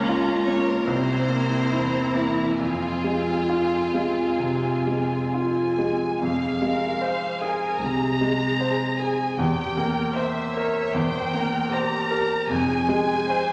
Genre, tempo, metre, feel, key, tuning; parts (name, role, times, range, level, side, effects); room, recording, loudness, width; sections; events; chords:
classical, romantic movement for piano and orchestra; 62-78 BPM; 4/4; rubato; F minor; A4 = 437 Hz
clear baby grand piano; melody; 0.0-13.5 s; C2 to C5; -26 LUFS; equal
warm symphonic violin section; melody; 0.0-13.5 s; E5 to Bb5; -31 LUFS; equal
clear symphonic violin section; second line; 0.0-13.5 s; Db4 to Db5; -32 LUFS; equal
rich symphonic viola section; accompaniment; 0.0-13.5 s; Bb3 to Db5; -33 LUFS; equal
rich symphonic cello section; bass; 0.0-13.1 s; C2 to F2; -37 LUFS; equal
rich symphonic double bass section; bass; 6.2-13.1 s; E1 to C2; -41 LUFS; equal
wet recital hall reverb, RT60 1.7 s; nothing above 10.9 kHz; -24 LUFS; mono
0.0-6.2 A section; 6.2-13.5 B section
0.0 Bbm/Db; 0.9 C7; 2.6 Fm; 9.4 C7/E; 12.5 Fm